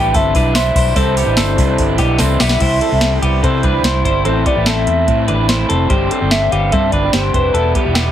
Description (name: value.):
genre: jangly indie pop.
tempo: 146 BPM.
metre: 4/4.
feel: straight.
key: C major.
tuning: A4 = 441 Hz.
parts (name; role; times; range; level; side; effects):
warbly nostalgic lead; melody; 0.0-7.7 s; B4 to G5; -19 LUFS; equal; chorus.
crunchy overdriven guitar; accompaniment; 0.0-8.1 s; G2 to G4; -21 LUFS; right 5 dB; none.
twelve-string electric guitar; arpeggios; 0.0-8.1 s; B3 to C5; -19 LUFS; left 4 dB; tube saturation, digital delay.
vintage muted fingered electric bass; bass; 0.0-8.1 s; E1 to C3; -17 LUFS; equal; none.
soft vintage rhythm box; drums; 0.1-8.1 s; crash cymbal, hi-hat, kick drum, snare drum; -18 LUFS; equal; none.
tambourine; percussion; 0.1-2.5 s; none; -32 LUFS; right 6 dB; none.
room: moderate club reverb, RT60 0.6 s.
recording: heavily compressed radio sound, multiband compression.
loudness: -12 LUFS.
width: side -10 dB against mid.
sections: 0.0-2.6 A section; 2.6-8.1 B section.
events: drum fill 2.2-2.6.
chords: 0.0 Cadd9; 4.3 Am; 7.5 Em.